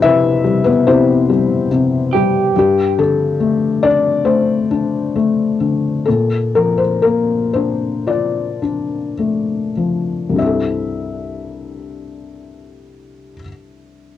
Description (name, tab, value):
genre	acoustic folk-pop ballad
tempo	48-71 BPM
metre	4/4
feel	straight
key	C major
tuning	A4 = 438 Hz
part	felt-muted upright piano	melody	0.0-14.2 s	C2 to E5	-14 LUFS	left 4 dB	cassette tape
part	electric guitar through a small old amp	arpeggios	0.0-2.9 s	G4 to A4	-18 LUFS	right 10 dB	tremolo, cassette tape
room	moderate booth ambience, RT60 0.3 s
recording	home recording on cassette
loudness	-14 LUFS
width	side -11 dB against mid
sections	0.0-2.5 A section; 2.5-10.4 B section; 10.4-14.2 C section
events	slowing down 2.5-10.4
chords	0.0 Cmaj7; 2.5 Gsus2; 6.1 Bbmaj7; 10.4 C6